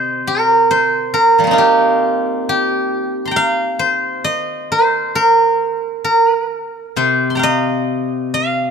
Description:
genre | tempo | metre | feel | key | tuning
chinese traditional, Chinese solo plucked strings | 67 BPM | 2/4 | uneven beats, rubato | C yu mode | A4 = 435 Hz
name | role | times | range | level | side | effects
steel-string zither | solo | 0.0-8.7 s | C3 to C6 | -13 LUFS | right 1 dB | none
room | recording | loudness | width
light reverb | close, detailed microphones | -13 LUFS | side -6 dB against mid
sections
0.0-8.7 A section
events
none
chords
none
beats
0.70 | 1.59 2.48 | 3.35 4.23 | 5.13 6.04 | 6.97 7.89

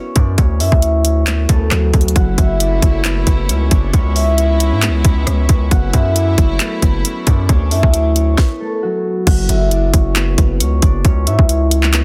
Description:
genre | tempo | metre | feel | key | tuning
hip hop, trap | 135 BPM | 4/4 | half-time | F# minor | A4 = 439 Hz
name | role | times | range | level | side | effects
concert harp | melody | 0.0-12.0 s | F#3 to F#5 | -22 LUFS | equal | low-pass filter
distorted 808-style bass | bass | 0.2-12.0 s | F#1 to G#2 | -18 LUFS | equal | distortion
trap drum kit | drums | 0.2-12.0 s | crash cymbal, handclaps, hi-hat, kick drum, rim click, snare drum | -16 LUFS | equal | overdrive
rich studio string section | sustained chords | 2.2-8.4 s | F#3 to E4 | -28 LUFS | equal | none
room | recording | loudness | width
little or no reverb | dense, heavily limited modern master | -14 LUFS | mono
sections
0.0-9.3 A section; 9.3-12.0 B section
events
stop 8.4-9.3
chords
0.4 Dmaj7; 2.2 F#m7; 3.9 C#m7; 5.7 F#m7; 7.5 Dmaj7; 9.3 F#5; 11.0 C#m7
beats
| 0.38 0.82 1.27 1.71 | 2.16 2.60 3.05 3.49 | 3.94 4.38 4.83 5.27 | 5.71 6.16 6.60 7.05 | 7.49 7.94 8.38 8.82 | 9.27 9.71 10.16 10.60 | 11.05 11.49 11.94

